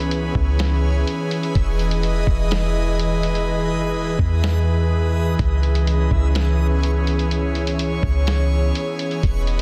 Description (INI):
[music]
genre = hip hop, atmospheric cloud-rap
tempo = 125 BPM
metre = 4/4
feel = half-time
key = C# minor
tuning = A4 = 440 Hz
[part]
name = airy breathy pad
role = sustained chords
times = 0.0-9.6 s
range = E3 to D#5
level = -25 LUFS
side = equal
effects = chorus, sidechain pumping
[part]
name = soft 808-style bass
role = bass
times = 0.0-9.6 s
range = E1 to E2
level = -22 LUFS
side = equal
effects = none
[part]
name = backwards swelling texture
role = texture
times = 0.0-9.6 s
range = G#3 to D#5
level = -36 LUFS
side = equal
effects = built-in reverb
[part]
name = lo-fi sampler-style drum kit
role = drums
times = 0.1-9.6 s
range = hi-hat, kick drum, snare drum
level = -26 LUFS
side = equal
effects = none
[sound]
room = little or no reverb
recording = dense, heavily limited modern master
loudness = -20 LUFS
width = mono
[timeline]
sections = 0.0-9.6 A section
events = hi-hats muted 3.5-5.4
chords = 0.0 C#m7; 1.6 Emaj7; 5.4 C#m7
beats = 0.11 0.59 1.07 | 1.55 2.03 2.51 2.99 | 3.47 3.95 4.43 4.91 | 5.39 5.87 6.35 6.83 | 7.31 7.79 8.27 8.75 | 9.23